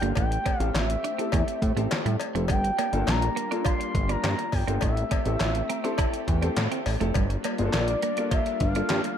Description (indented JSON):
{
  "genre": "early-eighties boogie funk",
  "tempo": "103 BPM",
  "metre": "4/4",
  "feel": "straight",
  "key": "G dorian",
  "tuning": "A4 = 440 Hz",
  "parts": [
    { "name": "dark grand piano", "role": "accompaniment", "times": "0.0-9.2 s", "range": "Bb3 to C6", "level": "-33 LUFS", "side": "left 2 dB", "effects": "lush chorus" },
    { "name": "lush unison pad", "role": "sustained chords", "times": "0.0-9.2 s", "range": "G3 to G4", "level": "-35 LUFS", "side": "left 1 dB", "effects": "chorus" },
    { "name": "clean electric guitar", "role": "riff", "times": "0.0-9.1 s", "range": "G3 to F4", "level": "-34 LUFS", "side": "right 10 dB", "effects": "analog chorus" },
    { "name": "fat analog bass", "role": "bass", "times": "0.0-9.0 s", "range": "F1 to A2", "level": "-26 LUFS", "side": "equal", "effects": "none" },
    { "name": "detuned 8-bit digital drum machine", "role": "drums", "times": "0.0-9.2 s", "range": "handclaps, hi-hat, kick drum, snare drum", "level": "-28 LUFS", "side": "equal", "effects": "none" },
    { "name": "expressive portamento lead", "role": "melody", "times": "0.2-9.2 s", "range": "D5 to C6", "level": "-31 LUFS", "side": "left 1 dB", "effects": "chorus, ping-pong delay" },
    { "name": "cowbell", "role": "percussion", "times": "0.2-9.0 s", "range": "none", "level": "-36 LUFS", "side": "left 6 dB", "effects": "none" }
  ],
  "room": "light reverb",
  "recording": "none",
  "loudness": "-23 LUFS",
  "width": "side -9 dB against mid",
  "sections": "0.0-9.2 A section",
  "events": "grand piano fill 5.4-7.2",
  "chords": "0.2 Am7; 2.5 Gm7; 4.8 Am7; 7.2 Gm7"
}